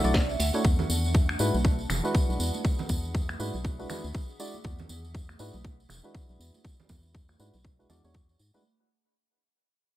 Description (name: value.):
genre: deep house.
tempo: 120 BPM.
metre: 4/4.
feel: swing 58% on 16ths.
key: unclear.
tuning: A4 = 440 Hz.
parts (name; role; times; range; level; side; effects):
vibraphone with medium mallets; melody; 0.0-0.6 s; D5 to F#5; -39 LUFS; right 2 dB; dub echo.
percussive organ stab; stabs; 0.0-8.6 s; G#3 to D5; -34 LUFS; equal; chorus, sidechain pumping, dub echo.
organ-like FM bass; bass; 0.0-8.5 s; E1 to G#2; -30 LUFS; equal; sidechain pumping.
house drum kit; drums; 0.0-8.0 s; finger snaps, hi-hat, snare drum; -34 LUFS; equal; low-pass filter on hats, low-pass filter on snare, low-pass filter on room.
tambourine; percussion; 0.0-8.6 s; none; -38 LUFS; right 2 dB; none.
granular cloud pad; texture; 0.0-8.6 s; D4 to C#6; -42 LUFS; equal; built-in reverb, sidechain pumping.
electronic kick drum; drums; 0.1-8.3 s; none; -26 LUFS; equal; none.
congas; percussion; 0.5-8.6 s; none; -37 LUFS; right 4 dB; none.
room: little or no reverb.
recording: none.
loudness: -25 LUFS.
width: side -14 dB against mid.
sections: 0.0-8.6 A section.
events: fade-out on ambient pad 0.0-8.6; fade-out 0.0-8.6; filter sweep on synth stab 0.0-8.6.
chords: 0.0 Bm11; 0.6 E9.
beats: 0.15 | 0.65 1.15 1.65 2.15 | 2.65 3.15 3.65 4.15 | 4.65 5.15 5.65 6.15 | 6.65 7.15 7.65 8.15.